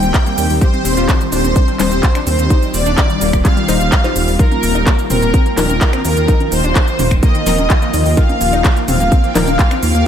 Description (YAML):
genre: progressive house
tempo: 127 BPM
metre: 4/4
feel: straight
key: Eb major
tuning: A4 = 440 Hz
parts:
  - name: soft supersaw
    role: melody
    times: 0.0-10.1 s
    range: Bb4 to G5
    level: -20 LUFS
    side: equal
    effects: phaser, wide subtle chorus, ping-pong delay
  - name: airy dreamy lead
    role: second line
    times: 0.0-10.1 s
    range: Bb4 to G5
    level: -26 LUFS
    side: equal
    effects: chorus, sidechain pumping, diffuse ambient delay
  - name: shimmering ambient pad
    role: sustained chords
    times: 0.0-10.1 s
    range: Eb3 to G4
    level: -21 LUFS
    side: left 1 dB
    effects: chorus, built-in reverb, sidechain pumping
  - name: wide unison pluck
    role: arpeggios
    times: 0.0-10.0 s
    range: Eb3 to G4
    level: -23 LUFS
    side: equal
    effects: sidechain pumping, diffuse ambient delay
  - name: wide unison pluck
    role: stabs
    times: 0.0-10.0 s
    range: F3 to C5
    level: -22 LUFS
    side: left 4 dB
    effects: sidechain pumping, diffuse ambient delay
  - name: dark detuned saw bass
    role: bass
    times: 0.0-10.0 s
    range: Eb1 to Eb2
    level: -17 LUFS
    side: equal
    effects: sidechain pumping
  - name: pop drum kit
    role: drums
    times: 0.0-10.0 s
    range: cabasa, finger snaps, handclaps, hi-hat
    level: -21 LUFS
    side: equal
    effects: sidechain pumping on hats, sidechain pumping on perc
  - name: electronic kick drum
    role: drums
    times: 0.1-9.7 s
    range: none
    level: -13 LUFS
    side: equal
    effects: none
  - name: backwards swelling texture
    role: texture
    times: 5.3-10.1 s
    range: G5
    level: -33 LUFS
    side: right 2 dB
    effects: none
  - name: electronic congas, bongos and toms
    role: percussion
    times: 4.5-9.6 s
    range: none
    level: -25 LUFS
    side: left 1 dB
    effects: sidechain pumping on perc, sidechain pumping on toms
room: light reverb, digital ambience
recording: none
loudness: -11 LUFS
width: side -9 dB against mid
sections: 0.0-10.1 A section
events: none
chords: 0.0 Cm/Eb; 4.4 Ebsus2